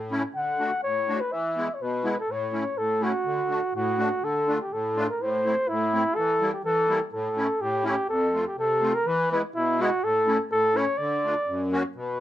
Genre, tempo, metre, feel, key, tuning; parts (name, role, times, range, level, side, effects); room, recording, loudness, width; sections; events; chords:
alpine folk, alpine dance band; 124 BPM; 2/4; straight; D major, D minor from 4.2 s; A4 = 440 Hz
warm flugelhorn; melody; 0.0-12.2 s; E4 to F#5; -24 LUFS; equal
musette accordion; accompaniment; 0.0-12.2 s; F2 to F#4; -29 LUFS; left 1 dB
moderate small room reverb, RT60 0.5 s; dark, warm production; -23 LUFS; side -12 dB against mid
0.0-4.2 A section; 4.2-12.0 B section
0.4 D; 1.3 E; 2.3 A; 3.3 D; 4.2 Dm; 5.2 Am; 6.2 Edim; 7.1 A; 8.1 F; 9.1 E; 10.0 A; 11.0 Dm; 11.5 F#